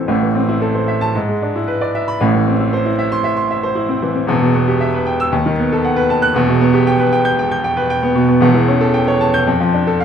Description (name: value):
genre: classical, virtuoso piano study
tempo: 115 BPM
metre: 4/4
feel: rubato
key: A minor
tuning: A4 = 441 Hz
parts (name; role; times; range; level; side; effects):
- clear baby grand piano; solo; 0.0-10.0 s; E1 to G6; -13 LUFS; equal; none
room: moderate large studio reverb, RT60 1.1 s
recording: dark, warm production, vinyl crackle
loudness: -13 LUFS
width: side -8 dB against mid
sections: 0.1-10.0 A section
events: none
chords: 0.1 Am; 1.1 E7/G#; 2.2 Am; 4.3 Em; 5.3 B7/D#; 6.4 Em; 8.4 A7/E; 9.5 Dm/F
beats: | 0.08 0.62 1.15 1.68 | 2.21 2.74 3.25 3.77 | 4.29 4.80 5.32 5.84 | 6.36 6.87 7.39 7.91 | 8.43 8.95 9.48 10.00